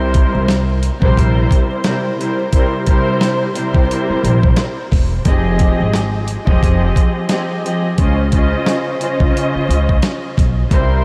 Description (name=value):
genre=hip hop, boom-bap hip-hop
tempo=88 BPM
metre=4/4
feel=swing 60% on 16ths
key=unclear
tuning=A4 = 440 Hz
part: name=muted studio string section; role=accompaniment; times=0.0-11.0 s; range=C3 to Eb5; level=-20 LUFS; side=equal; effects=cassette tape, high-pass filter, low-pass filter
part: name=upright bass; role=bass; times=0.0-11.0 s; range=E1 to Db2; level=-19 LUFS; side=equal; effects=none
part: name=dusty soul sampler-style drum kit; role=drums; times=0.1-10.9 s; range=hi-hat, kick drum, snare drum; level=-18 LUFS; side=equal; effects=none
room=moderate huge ambient reverb, RT60 6.9 s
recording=dreamy mix soaked in reverb, vinyl crackle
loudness=-15 LUFS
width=mono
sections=0.0-11.0 A section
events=none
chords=0.0 C7; 5.3 Fm9; 8.0 Dbmaj9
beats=0.48 1.17 1.85 | 2.53 3.21 3.89 4.57 | 5.26 5.94 6.62 7.30 | 7.98 8.66 9.35 10.03 | 10.71